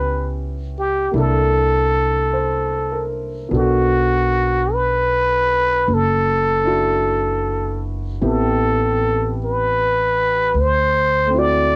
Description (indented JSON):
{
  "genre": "jazz ballad",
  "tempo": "51 BPM",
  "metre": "4/4",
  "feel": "swing 66% on 8ths",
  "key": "unclear",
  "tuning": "A4 = 440 Hz",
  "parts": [
    { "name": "trumpet with plunger mute", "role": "melody", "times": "0.0-11.8 s", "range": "F#4 to D5", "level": "-20 LUFS", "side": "equal", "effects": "none" },
    { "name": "warm grand piano", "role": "accompaniment", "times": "0.0-11.8 s", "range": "A3 to C5", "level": "-27 LUFS", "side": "equal", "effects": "cassette tape" },
    { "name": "upright bass", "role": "bass", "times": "0.0-11.8 s", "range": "F#1 to D2", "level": "-25 LUFS", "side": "equal", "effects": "none" }
  ],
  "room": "light reverb",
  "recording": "home recording on cassette",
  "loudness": "-18 LUFS",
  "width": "mono",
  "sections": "0.0-11.8 A section",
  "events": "none",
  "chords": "0.0 C#m7b5; 1.1 C13; 3.5 Bm7; 8.2 Am7; 10.5 D7"
}